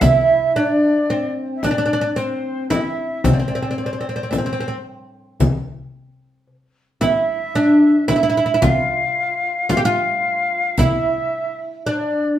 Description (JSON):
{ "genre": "Turkish makam ensemble", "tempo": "112 BPM (eighths)", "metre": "10/8", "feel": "straight", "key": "unclear", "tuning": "A4 = 441 Hz", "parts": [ { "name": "oud", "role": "melody", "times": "0.0-12.4 s", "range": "C4 to G4", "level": "-18 LUFS", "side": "right 2 dB", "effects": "none" }, { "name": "breathy bright ney", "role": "second line", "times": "0.0-12.4 s", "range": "C5 to F5", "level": "-23 LUFS", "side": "left 4 dB", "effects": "none" }, { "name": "darbuka", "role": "percussion", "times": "0.0-12.0 s", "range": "none", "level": "-23 LUFS", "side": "left 1 dB", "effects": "none" }, { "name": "frame drum", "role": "percussion", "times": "0.0-11.0 s", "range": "none", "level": "-21 LUFS", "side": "left 2 dB", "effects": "none" }, { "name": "riq", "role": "percussion", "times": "0.0-11.0 s", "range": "none", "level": "-27 LUFS", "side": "equal", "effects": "none" } ], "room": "wet studio reverb, RT60 0.8 s", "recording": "band playing live in one room", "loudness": "-16 LUFS", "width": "side -11 dB against mid", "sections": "0.0-12.4 A section", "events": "none", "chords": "none" }